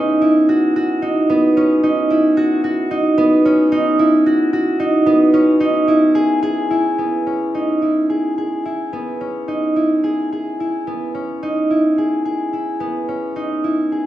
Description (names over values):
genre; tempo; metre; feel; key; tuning
contemporary instrumental, contemporary; 218 BPM (eighths); 7/8; straight; C# minor; A4 = 440 Hz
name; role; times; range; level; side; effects
concert harp; solo; 0.0-14.1 s; B3 to G#4; -14 LUFS; right 1 dB; none
room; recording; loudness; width
wet recital hall reverb, RT60 1.2 s; minimal, uncompressed stereo recording; -14 LUFS; side -13 dB against mid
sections
0.0-7.0 A section; 7.0-14.1 B section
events
none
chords
0.0 B; 7.0 C#m7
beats
0.22 0.49 0.76 1.03 | 1.30 1.57 1.84 2.11 2.38 2.65 2.91 | 3.18 3.45 3.72 3.99 4.26 4.53 4.80 | 5.07 5.34 5.61 5.88 6.15 6.43 6.71 | 6.99 7.27 7.55 7.83 8.10 8.38 8.66 | 8.94 9.21 9.49 9.77 10.05 10.32 10.60 | 10.88 11.15 11.43 11.71 11.98 12.26 12.54 | 12.81 13.09 13.37 13.65 13.93